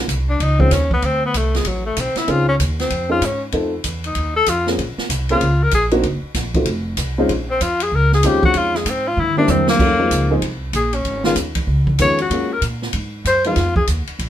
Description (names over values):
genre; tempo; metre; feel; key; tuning
jazz, small-group swing and bop; 192 BPM; 4/4; swing 63% on 8ths; Bb minor; A4 = 440 Hz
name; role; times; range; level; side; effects
upright bass; bass; 0.0-14.3 s; F1 to Bb2; -20 LUFS; equal; none
open jazz drum kit; drums; 0.1-14.3 s; crash cymbal, hi-hat, kick drum, ride cymbal, snare drum, toms; -23 LUFS; right 1 dB; none
breathy tenor saxophone; melody; 0.3-13.9 s; Gb3 to Db5; -18 LUFS; left 2 dB; none
dark upright piano; accompaniment; 0.6-13.6 s; Eb3 to A4; -20 LUFS; left 1 dB; none
room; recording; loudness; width
moderate studio reverb, RT60 0.6 s; minimal, uncompressed stereo recording; -15 LUFS; side -11 dB against mid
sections
0.0-9.8 A section; 9.8-14.3 A section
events
tenor saxophone solo 0.0-14.3; drum fill 9.2-9.8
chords
0.0 Bbmadd9 (rootless); 1.0 D5; 2.3 Dbmaj9; 3.5 F7; 4.8 Bbmadd9; 6.0 Cm7b5; 6.7 F5; 7.3 Bbm11; 9.2 C7; 9.8 Fm7; 11.1 Db9; 12.3 Gbmaj9; 13.6 Ebsus2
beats
0.09 0.40 0.71 | 1.03 1.34 1.65 1.97 | 2.28 2.59 2.91 3.22 | 3.53 3.85 4.16 4.47 | 4.79 5.10 5.41 5.73 | 6.04 6.35 6.67 6.98 | 7.29 7.61 7.92 8.23 | 8.55 8.86 9.17 9.49 | 9.80 10.11 10.43 10.74 | 11.05 11.37 11.68 11.99 | 12.31 12.62 12.93 13.25 | 13.56 13.87 14.19